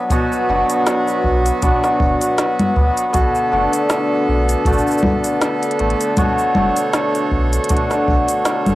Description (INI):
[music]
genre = folktronica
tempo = 79 BPM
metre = 4/4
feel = swing 56% on 16ths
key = unclear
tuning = A4 = 435 Hz
[part]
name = accordion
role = sustained chords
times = 0.0-8.8 s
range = D3 to C#5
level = -20 LUFS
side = right 1 dB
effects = none
[part]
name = hammered dulcimer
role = arpeggios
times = 0.0-8.8 s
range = B2 to F#4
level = -18 LUFS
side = equal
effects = analog delay
[part]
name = kick drum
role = drums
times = 0.1-8.2 s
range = none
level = -20 LUFS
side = equal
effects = cassette tape
[part]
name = organic electronic drum kit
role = drums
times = 0.1-8.8 s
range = cabasa, congas, hi-hat, snare drum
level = -21 LUFS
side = equal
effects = cassette tape
[part]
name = warm sub bass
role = bass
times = 0.5-8.8 s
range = F#1 to D2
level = -19 LUFS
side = equal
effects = transformer saturation
[sound]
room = moderate spring reverb, RT60 2.7 s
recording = home recording on cassette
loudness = -14 LUFS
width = side -16 dB against mid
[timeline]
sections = 0.0-8.8 A section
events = band accent 8.5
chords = 0.0 Bm/F#; 3.1 Bm7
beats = | 0.11 0.86 1.62 2.38 | 3.14 3.90 4.66 5.42 | 6.18 6.94 7.70 8.46